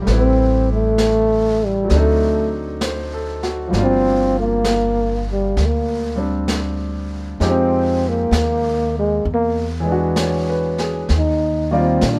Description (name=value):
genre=jazz ballad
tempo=65 BPM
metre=4/4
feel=swing 66% on 8ths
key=unclear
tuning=A4 = 440 Hz
part: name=warm grand piano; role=accompaniment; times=0.0-12.2 s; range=Eb3 to D5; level=-25 LUFS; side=equal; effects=none
part: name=upright bass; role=bass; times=0.0-12.2 s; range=G1 to Bb2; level=-24 LUFS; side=equal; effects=none
part: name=vintage brush drum kit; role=drums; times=0.1-12.2 s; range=brushed snare drum, hi-hat, snare drum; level=-30 LUFS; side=equal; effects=none
part: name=breathy trombone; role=melody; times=0.2-12.2 s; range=G3 to Eb4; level=-20 LUFS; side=equal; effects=none
room=little or no reverb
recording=none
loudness=-18 LUFS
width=mono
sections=0.0-12.2 A section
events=trombone solo 0.0-12.2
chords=0.1 Am9; 1.9 D7b9; 3.7 Gm7; 7.4 Fm7; 9.3 E9; 11.1 Ebmaj9